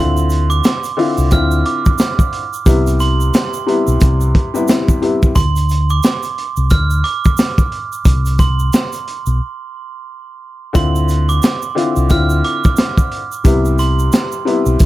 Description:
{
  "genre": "hip hop, boom-bap hip-hop",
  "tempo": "89 BPM",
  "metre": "4/4",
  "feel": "swing 60% on 16ths",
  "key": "D dorian",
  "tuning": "A4 = 439 Hz",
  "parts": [
    { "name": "glockenspiel with soft plastic mallets", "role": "melody", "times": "0.0-14.3 s", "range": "C6 to F6", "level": "-22 LUFS", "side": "right 6 dB", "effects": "high-pass filter, low-pass filter, tape echo" },
    { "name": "warm upright piano", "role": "accompaniment", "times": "0.0-5.3, 10.7-14.9 s", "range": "C3 to F4", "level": "-18 LUFS", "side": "left 3 dB", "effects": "cassette tape, high-pass filter, low-pass filter" },
    { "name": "fingered electric bass", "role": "bass", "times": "0.0-14.9 s", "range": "B1 to D2", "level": "-14 LUFS", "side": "equal", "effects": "none" },
    { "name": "tube shaker", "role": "percussion", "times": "0.2-14.9 s", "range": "none", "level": "-32 LUFS", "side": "right 7 dB", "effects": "none" },
    { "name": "crunchy breakbeat drum kit", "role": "drums", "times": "0.3-14.9 s", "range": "hi-hat, kick drum, snare drum", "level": "-14 LUFS", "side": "equal", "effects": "none" }
  ],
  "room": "light reverb",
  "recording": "none",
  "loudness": "-12 LUFS",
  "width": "side -16 dB against mid",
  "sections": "0.0-14.9 A section",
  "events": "break 5.4-10.8",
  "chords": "0.0 Dm9; 2.7 Cmaj7; 5.4 N.C.; 10.8 Dm9; 13.4 Cmaj7"
}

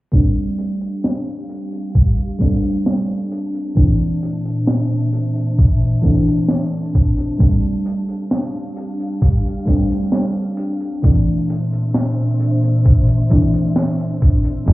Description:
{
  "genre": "vaporwave",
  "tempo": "66 BPM",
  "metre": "4/4",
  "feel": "straight",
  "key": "F major",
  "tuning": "A4 = 440 Hz",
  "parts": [
    { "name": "mellow FM electric piano", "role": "accompaniment", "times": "0.1-14.7 s", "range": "E3 to D4", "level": "-20 LUFS", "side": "equal", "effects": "analog chorus, cassette tape, analog delay" },
    { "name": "soft string machine", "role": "sustained chords", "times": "0.1-14.7 s", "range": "Bb2 to A5", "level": "-21 LUFS", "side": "equal", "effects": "ensemble chorus" },
    { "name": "crunchy breakbeat drum kit", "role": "drums", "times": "0.1-14.7 s", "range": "hi-hat, snare drum", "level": "-23 LUFS", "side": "equal", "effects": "none" },
    { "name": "electronic kick drum", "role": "drums", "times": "0.1-14.7 s", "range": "none", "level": "-14 LUFS", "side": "equal", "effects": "none" },
    { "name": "modern bright fingered electric bass", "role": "bass", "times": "14.7 s", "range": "F1", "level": "-13 LUFS", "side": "equal", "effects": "none" }
  ],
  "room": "light reverb, small room ambience",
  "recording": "heard muffled through a wall, club reverb, cassette tape, EQ, low-pass filter",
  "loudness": "-15 LUFS",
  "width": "side -18 dB against mid",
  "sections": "0.1-14.7 A section",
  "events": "filter sweep 0.1-14.7",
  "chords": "0.1 F69; 3.8 Bbmaj9#11; 7.4 F69; 11.0 Bbmaj9#11"
}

